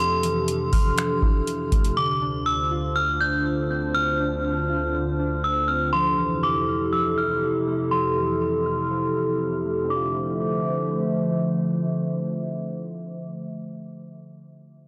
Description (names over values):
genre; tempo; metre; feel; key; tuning
hip hop, atmospheric cloud-rap; 121 BPM; 4/4; half-time; D minor; A4 = 436 Hz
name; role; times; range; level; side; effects
metallic FM bell; melody; 0.0-11.3 s; C6 to G6; -28 LUFS; equal; chorus, low-pass filter, delay
warbly tape-like pad; sustained chords; 0.0-13.2 s; D2 to E5; -27 LUFS; equal; chorus, built-in reverb, sidechain pumping, low-pass filter
warbly lo-fi synth keys; arpeggios; 0.0-13.2 s; D3 to F6; -34 LUFS; equal; chorus, low-pass filter, delay
booming analog drum machine; drums; 0.2-2.0 s; finger snaps, hi-hat, kick drum; -24 LUFS; equal; soft clipping on snare
room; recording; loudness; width
light reverb, digital ambience; blown-out, overdriven recording, overdrive; -24 LUFS; mono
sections
0.0-9.9 A section; 9.9-13.9 B section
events
filter sweep 0.0-9.9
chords
0.0 Fmaj7; 2.0 Dm7; 5.9 Fmaj7; 9.9 Dm9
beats
0.48 0.98 1.47 | 1.97 2.46 2.96 3.46 | 3.95 4.45 4.94 5.44 | 5.94 6.43 6.93 7.42 | 7.92 8.41 8.91 9.41 | 9.90 10.40 10.89 11.39 | 11.89 12.38 12.88